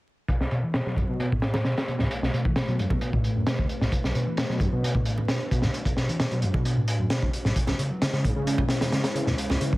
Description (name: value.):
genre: breakbeat, breaks.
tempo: 132 BPM.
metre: 4/4.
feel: straight.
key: B dorian.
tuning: A4 = 440 Hz.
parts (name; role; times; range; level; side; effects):
dark analog pad; sustained chords; 1.6-9.8 s; G#3 to B4; -35 LUFS; left 1 dB; chorus, sidechain pumping.
dark detuned saw bass; bass; 0.3-9.6 s; B1 to C#3; -28 LUFS; equal; none.
crunchy breakbeat drum kit; drums; 0.3-9.8 s; hi-hat, kick drum, snare drum; -26 LUFS; equal; low-pass filter on kick, low-pass filter on hats, low-pass filter on snare, low-pass filter on room.
picked electric bass; riff; 0.5-9.8 s; A2 to C#4; -28 LUFS; equal; tube saturation, low-pass filter.
congas; percussion; 1.0-9.6 s; none; -35 LUFS; right 2 dB; none.
room: studio reverb.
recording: vinyl crackle.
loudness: -23 LUFS.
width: side -19 dB against mid.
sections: 0.3-9.8 A section.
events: filter sweep on drum 0.3-9.8; filter sweep on detuned saw bass 0.3-9.8; filter sweep on picked electric bass 0.3-9.8.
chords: 0.3 Bm7; 7.6 C#m7.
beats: | 0.29 0.74 1.20 1.65 | 2.11 2.56 3.02 3.47 | 3.92 4.38 4.83 5.29 | 5.74 6.20 6.65 7.11 | 7.56 8.02 8.47 8.93 | 9.38.